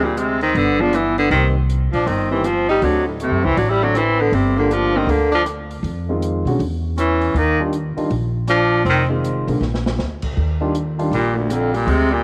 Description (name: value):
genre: jazz, small-group swing and bop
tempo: 159 BPM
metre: 4/4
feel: swing 64% on 8ths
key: Eb major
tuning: A4 = 438 Hz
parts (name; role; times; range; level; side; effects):
- clear baritone saxophone; melody; 0.0-12.2 s; D2 to G3; -21 LUFS; equal; none
- bright tenor saxophone; second line; 0.0-12.2 s; Bb2 to Fb4; -26 LUFS; equal; none
- upright bass; bass; 0.0-12.2 s; F1 to Cb3; -24 LUFS; equal; none
- open jazz drum kit; drums; 0.2-12.0 s; crash cymbal, hi-hat, kick drum, rim click, snare drum; -32 LUFS; equal; none
- warm baby grand piano; accompaniment; 0.8-11.1 s; D3 to G4; -26 LUFS; equal; none
room: light reverb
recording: none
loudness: -18 LUFS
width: mono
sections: 0.0-10.4 A section; 10.4-12.2 A section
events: drum fill 9.6-10.0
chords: 0.0 D7(b5, no3); 0.5 G7b9; 1.3 Cm7; 2.8 D7; 4.3 Gm7; 5.8 Fm7; 6.6 Dbm/Fb; 7.3 Ebmaj9; 8.9 Fm7; 9.6 Bb; 10.4 Ebmaj9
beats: 0.17 0.55 0.93 | 1.30 1.68 2.06 2.44 | 2.81 3.19 3.57 3.95 | 4.33 4.70 5.08 5.46 | 5.84 6.21 6.59 6.97 | 7.35 7.72 8.10 8.48 | 8.86 9.23 9.61 9.99 | 10.37 10.74 11.12 11.50 | 11.88